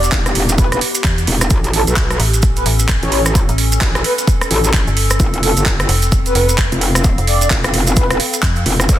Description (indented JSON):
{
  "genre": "bass house",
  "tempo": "130 BPM",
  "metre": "4/4",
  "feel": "swing 60% on 16ths",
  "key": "unclear",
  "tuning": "A4 = 439 Hz",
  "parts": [
    { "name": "breathy flute-like synth lead", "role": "melody", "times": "0.0-8.2 s", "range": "A4 to D5", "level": "-22 LUFS", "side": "equal", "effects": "analog chorus, digital delay" },
    { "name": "metallic FM bass", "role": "bass", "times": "0.0-8.6 s", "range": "E1 to F2", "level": "-16 LUFS", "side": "equal", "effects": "sidechain pumping" },
    { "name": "house drum kit", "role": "drums", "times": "0.0-9.0 s", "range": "handclaps, hi-hat, rim click", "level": "-19 LUFS", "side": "right 2 dB", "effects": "soft clipping on snare" },
    { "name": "maracas", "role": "percussion", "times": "0.0-9.0 s", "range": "none", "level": "-23 LUFS", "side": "right 4 dB", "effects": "none" },
    { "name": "downlifter", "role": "sound effects", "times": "0.0-1.5 s", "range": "none", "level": "-33 LUFS", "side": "left 1 dB", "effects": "none" },
    { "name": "warbly tape-like pad", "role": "texture", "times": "0.0-9.0 s", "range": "B3 to F5", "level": "-25 LUFS", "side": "left 1 dB", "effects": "chorus, built-in reverb, sidechain pumping" },
    { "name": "metallic wobble bass", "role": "bass", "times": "0.1-9.0 s", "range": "E1 to D2", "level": "-17 LUFS", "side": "equal", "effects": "chorus, sidechain pumping" },
    { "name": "electronic kick drum", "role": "drums", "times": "0.1-9.0 s", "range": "none", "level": "-16 LUFS", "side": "equal", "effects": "none" }
  ],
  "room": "digital ambience",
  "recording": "dense, heavily limited modern master",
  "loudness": "-12 LUFS",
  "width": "side -12 dB against mid",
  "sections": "0.0-9.0 A section",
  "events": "none",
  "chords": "0.0 Em; 1.5 A; 5.2 F"
}